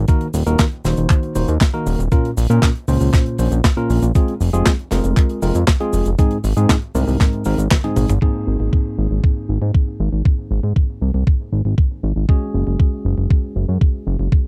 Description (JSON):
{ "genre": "italo disco", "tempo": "118 BPM", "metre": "4/4", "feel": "straight", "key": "unclear", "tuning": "A4 = 440 Hz", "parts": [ { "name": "fat analog bass", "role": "bass", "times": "0.0-14.3 s", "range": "Eb1 to Bb2", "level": "-20 LUFS", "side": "equal", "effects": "none" }, { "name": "barky tine electric piano", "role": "stabs", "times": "0.1-14.5 s", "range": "Ab2 to C5", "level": "-25 LUFS", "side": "equal", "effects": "tape echo" }, { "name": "electronic kick drum", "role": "drums", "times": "0.1-14.4 s", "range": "none", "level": "-17 LUFS", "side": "equal", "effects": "none" }, { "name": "tight funk drum kit", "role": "drums", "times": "0.1-8.3 s", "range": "cabasa, crash cymbal, handclaps, hi-hat, snare drum, toms", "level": "-24 LUFS", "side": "equal", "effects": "low-pass filter on hats, low-pass filter on toms, low-pass filter on cymbals, low-pass filter on snare, low-pass filter on perc, low-pass filter on room" } ], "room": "little or no reverb", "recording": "dry, close 1970s-style studio recording", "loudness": "-17 LUFS", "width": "mono", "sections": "0.0-8.2 A section; 8.2-14.5 B section", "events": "drum fill 7.7-8.2; band accent 7.7", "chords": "0.1 Ebm; 2.1 Bbm; 4.2 Fm; 6.2 Abadd9; 12.3 Gbsus2" }